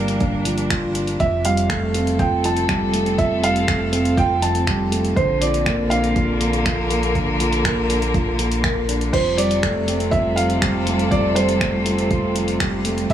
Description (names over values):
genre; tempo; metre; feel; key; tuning
piano and strings electronica; 121 BPM; 4/4; straight; F major; A4 = 438 Hz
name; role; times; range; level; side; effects
felt-muted upright piano; melody; 0.0-13.1 s; C5 to A5; -23 LUFS; right 2 dB; tape echo
rich string quartet; sustained chords; 0.0-13.1 s; C3 to Bb4; -25 LUFS; left 2 dB; sidechain pumping
felt-muted upright piano; riff; 0.0-13.1 s; D3 to Bb4; -22 LUFS; right 1 dB; tape echo
round analog bass; bass; 0.0-13.1 s; F1 to Bb1; -25 LUFS; equal; tube saturation, sidechain pumping
deep house drum kit; drums; 0.1-13.1 s; crash cymbal, finger snaps, hi-hat; -27 LUFS; equal; none
electronic kick drum; drums; 0.2-13.1 s; none; -24 LUFS; right 1 dB; none
room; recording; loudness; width
light reverb; none; -17 LUFS; side -10 dB against mid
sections
0.0-13.1 A section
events
none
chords
0.0 Gm7; 1.2 Fadd9; 5.2 Bb; 9.1 Fadd9